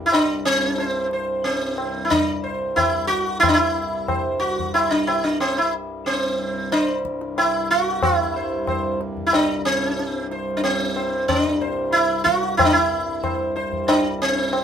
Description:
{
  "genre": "indian classical, Hindustani",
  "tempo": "92 BPM",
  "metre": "7/4",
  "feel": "straight",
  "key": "C raga yaman",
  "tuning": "A4 = 440 Hz",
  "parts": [
    { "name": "hand-pumped harmonium", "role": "drone", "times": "0.0-14.6 s", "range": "C2 to G2", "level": "-31 LUFS", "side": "right 1 dB", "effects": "none" },
    { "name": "sitar", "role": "melody", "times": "0.1-14.6 s", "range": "C4 to C5", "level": "-19 LUFS", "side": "equal", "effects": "none" },
    { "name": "tabla", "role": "percussion", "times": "0.1-14.6 s", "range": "none", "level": "-26 LUFS", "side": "left 2 dB", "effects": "none" }
  ],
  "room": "light reverb",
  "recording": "minimal, uncompressed stereo recording",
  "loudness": "-19 LUFS",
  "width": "side -8 dB against mid",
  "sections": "0.0-8.0 A section; 8.0-14.6 B section",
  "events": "none",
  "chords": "none",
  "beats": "0.13 0.79 1.45 2.11 2.77 | 3.43 4.09 4.75 5.41 6.06 6.72 7.37 | 8.03 8.68 9.34 9.99 10.64 11.29 11.94 | 12.59 13.24 13.89 14.54"
}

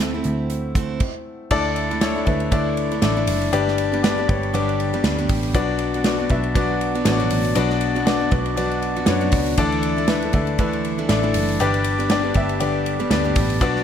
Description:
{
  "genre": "piano-driven pop",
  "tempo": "119 BPM",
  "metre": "4/4",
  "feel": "swing 56% on 16ths",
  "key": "D major",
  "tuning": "A4 = 439 Hz",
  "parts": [
    { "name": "clear concert grand piano", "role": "accompaniment", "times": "0.0-13.8 s", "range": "G2 to G5", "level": "-22 LUFS", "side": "left 5 dB", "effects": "none" },
    { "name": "picked steel-string acoustic guitar", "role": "riff", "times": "0.0-13.8 s", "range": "G2 to G4", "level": "-26 LUFS", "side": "right 6 dB", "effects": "none" },
    { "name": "vintage muted picked electric bass", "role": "bass", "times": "0.0-13.8 s", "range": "F#1 to F#2", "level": "-25 LUFS", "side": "right 1 dB", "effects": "none" },
    { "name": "natural country drum kit", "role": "drums", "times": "0.2-13.8 s", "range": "crash cymbal, hi-hat, kick drum, ride cymbal, snare drum", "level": "-24 LUFS", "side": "right 1 dB", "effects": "gated reverb" }
  ],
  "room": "moderate plate reverb, RT60 1.5 s, studio reverb",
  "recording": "bright 1980s-style digital production",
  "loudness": "-18 LUFS",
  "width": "side -8 dB against mid",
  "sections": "0.0-1.5 A section; 1.5-13.8 B section",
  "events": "grand piano solo 0.0-1.5; stop 1.0-1.5",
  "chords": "0.0 Am; 1.5 Dsus2; 3.5 G; 5.5 Bm; 9.6 Dsus2; 11.6 G",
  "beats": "0.00 0.51 1.01 | 1.51 2.02 2.52 3.03 | 3.53 4.04 4.54 5.04 | 5.55 6.05 6.56 7.06 | 7.56 8.07 8.57 9.08 | 9.58 10.09 10.59 11.09 | 11.60 12.10 12.61 13.11 | 13.62"
}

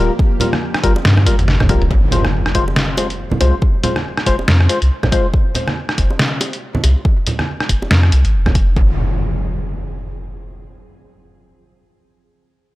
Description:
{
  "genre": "deep dubstep",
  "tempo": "140 BPM",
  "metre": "4/4",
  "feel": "swing 58% on 16ths, half-time",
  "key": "F dorian",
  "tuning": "A4 = 441 Hz",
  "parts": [
    { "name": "bowed-like drone", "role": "sustained chords", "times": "0.0-1.9, 8.8-9.0 s", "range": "F3 to G4", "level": "-31 LUFS", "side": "right 1 dB", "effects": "none" },
    { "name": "percussive organ stab", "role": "stabs", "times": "0.0-5.3 s", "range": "G3 to C5", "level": "-21 LUFS", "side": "left 3 dB", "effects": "analog chorus, dub echo" },
    { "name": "soft dub sub bass", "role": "bass", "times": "0.0-9.0 s", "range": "D1 to G2", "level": "-14 LUFS", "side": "equal", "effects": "transformer saturation" },
    { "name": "electronic kick drum", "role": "drums", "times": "0.2-8.9 s", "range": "none", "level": "-16 LUFS", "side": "equal", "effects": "overdrive" },
    { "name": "bongos and congas", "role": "percussion", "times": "0.2-8.5 s", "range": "none", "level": "-23 LUFS", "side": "right 2 dB", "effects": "dub echo" },
    { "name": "trip hop sampler-style drum kit", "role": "drums", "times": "0.4-8.7 s", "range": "hi-hat, rim click, snare drum, toms", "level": "-19 LUFS", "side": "equal", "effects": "none" },
    { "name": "impact", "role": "sound effects", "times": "1.9-3.6, 8.8-10.5 s", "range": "none", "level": "-20 LUFS", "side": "equal", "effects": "none" }
  ],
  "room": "digital ambience",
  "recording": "dry, gritty hardware recording",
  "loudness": "-13 LUFS",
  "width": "side -18 dB against mid",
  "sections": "0.0-1.9 A section; 1.9-8.8 B section; 8.8-10.5 C section",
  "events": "drop 0.0-1.9; drum fill 1.1-1.9; impact 1.9-3.6",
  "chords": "0.0 Gm7; 1.9 Fm",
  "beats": "| 0.19 0.62 1.05 1.48 | 1.91 2.34 2.77 3.19 | 3.62 4.05 4.48 4.91 | 5.34 5.76 6.19 6.62 | 7.05 7.48 7.91 8.34 | 8.77 9.19 9.62 10.05"
}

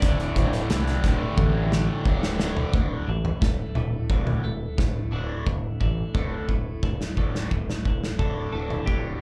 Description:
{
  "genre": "quiet-loud alternative rock",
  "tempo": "88 BPM",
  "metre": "4/4",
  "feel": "straight",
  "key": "unclear",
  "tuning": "A4 = 440 Hz",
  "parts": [
    { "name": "electric guitar at the edge of break-up", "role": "melody", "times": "0.0-2.0, 8.2-9.2 s", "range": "D4 to D5", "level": "-38 LUFS", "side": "equal", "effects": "lush chorus, slapback echo, digital delay" },
    { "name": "crunchy overdriven guitar", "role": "riff", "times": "0.0-9.2 s", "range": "D2 to D3", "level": "-36 LUFS", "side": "equal", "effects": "phaser, slapback echo" },
    { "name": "raw garage guitar", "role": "riff", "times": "0.0-2.7 s", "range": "D2 to D3", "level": "-36 LUFS", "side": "equal", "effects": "overdrive, slapback echo" },
    { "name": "thick fuzz guitar", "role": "riff", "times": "0.0-2.7 s", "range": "D2 to D3", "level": "-32 LUFS", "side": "equal", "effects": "distortion" },
    { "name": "growling fingered electric bass", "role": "bass", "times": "0.0-9.1 s", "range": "D1 to C2", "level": "-30 LUFS", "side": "equal", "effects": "overdrive" },
    { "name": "loose indie drum kit", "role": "drums", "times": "0.0-9.0 s", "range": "hi-hat, kick drum, snare drum, toms", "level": "-28 LUFS", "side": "equal", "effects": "none" },
    { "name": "twelve-string electric guitar", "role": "arpeggios", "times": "2.7-9.2 s", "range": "D2 to A3", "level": "-37 LUFS", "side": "equal", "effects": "tremolo" }
  ],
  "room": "little or no reverb",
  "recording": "live gig heard through the venue's PA, club reverb",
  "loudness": "-25 LUFS",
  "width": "mono",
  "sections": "0.0-2.7 A section; 2.7-8.2 B section; 8.2-9.2 C section",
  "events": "drum fill 1.4-2.7, 5.5-8.2",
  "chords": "0.0 D5",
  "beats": "| 0.02 0.70 1.38 2.06 | 2.74 3.42 4.10 4.78 | 5.46 6.14 6.82 7.51 | 8.19 8.87"
}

